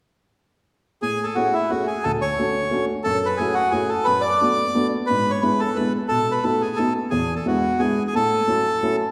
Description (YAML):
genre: musette waltz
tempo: 178 BPM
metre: 3/4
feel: straight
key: A major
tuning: A4 = 440 Hz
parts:
  - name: bandoneon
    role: melody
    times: 1.0-9.0 s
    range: E4 to D5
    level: -23 LUFS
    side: equal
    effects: none
  - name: dark upright piano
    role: accompaniment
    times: 1.0-9.0 s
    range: D2 to G#4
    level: -26 LUFS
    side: equal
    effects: none
room: wet scoring stage reverb, RT60 1.9 s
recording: heard from further back in the room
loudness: -21 LUFS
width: mono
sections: 1.0-9.1 A section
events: none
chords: 1.0 Amaj7; 2.0 Dmaj7; 3.1 F#m7; 4.1 D6/F#; 5.1 E7/G#; 6.1 B7; 7.1 E7; 8.1 A6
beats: | 1.03 1.37 1.71 | 2.05 2.39 2.72 | 3.06 3.40 3.74 | 4.07 4.41 4.75 | 5.10 5.44 5.78 | 6.11 6.45 6.79 | 7.13 7.46 7.80 | 8.13 8.47 8.81